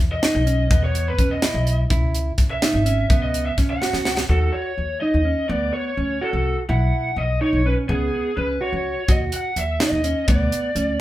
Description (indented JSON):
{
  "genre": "progressive instrumental, band music in an uneven meter",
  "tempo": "251 BPM (eighths)",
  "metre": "5/8",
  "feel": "straight",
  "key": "C# minor",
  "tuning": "A4 = 441 Hz",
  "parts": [
    { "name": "upright bass", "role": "bass", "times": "0.0-11.0 s", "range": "G#1 to E2", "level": "-22 LUFS", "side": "equal", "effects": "none" },
    { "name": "lead guitar through a small cranked amp", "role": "melody", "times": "0.1-11.0 s", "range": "G#4 to F#5", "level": "-25 LUFS", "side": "left 1 dB", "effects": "overdrive" },
    { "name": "mellow electric guitar", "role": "arpeggios", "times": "0.2-11.0 s", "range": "B3 to F#4", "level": "-25 LUFS", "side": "right 3 dB", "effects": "none" },
    { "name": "tight funk drum kit", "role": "drums", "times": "0.2-4.3, 9.1-10.9 s", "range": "hi-hat, kick drum, snare drum", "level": "-20 LUFS", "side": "equal", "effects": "none" }
  ],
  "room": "moderate large studio reverb, RT60 0.8 s",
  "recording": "band playing live in one room",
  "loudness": "-18 LUFS",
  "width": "side -15 dB against mid",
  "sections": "0.0-4.3 A section; 4.3-11.0 B section",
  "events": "lead electric guitar solo 0.0-4.3; drum fill 3.8-4.3",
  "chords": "0.0 E5; 1.9 C#m7; 4.3 D#m7; 5.5 Dmaj7; 6.7 Bsus4; 7.9 C#5; 9.1 D#m7; 10.3 Dmaj7(no3)",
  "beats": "0.23 0.47 | 0.71 0.95 1.19 1.43 1.67 | 1.91 2.15 2.39 2.63 2.87 | 3.10 3.34 3.58 3.82 4.06 | 4.30 4.54 4.78 5.02 5.26 | 5.50 5.74 5.98 6.22 6.46 | 6.70 6.93 7.17 7.41 7.65 | 7.89 8.13 8.37 8.61 8.85 | 9.09 9.33 9.57 9.81 10.05 | 10.29 10.52 10.76"
}